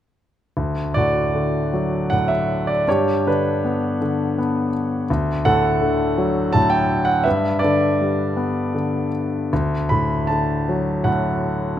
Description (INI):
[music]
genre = classical, lyrical solo piano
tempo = 75-84 BPM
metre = 3/4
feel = rubato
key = D major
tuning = A4 = 440 Hz
[part]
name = clear grand piano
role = solo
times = 0.6-11.8 s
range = D2 to B5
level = -18 LUFS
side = equal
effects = none
[sound]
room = moderate concert hall reverb, RT60 2.0 s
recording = none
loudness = -18 LUFS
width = side -11 dB against mid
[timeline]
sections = 0.6-11.8 A section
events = none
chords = 0.6 D; 2.9 G; 5.1 D; 7.3 G; 9.5 D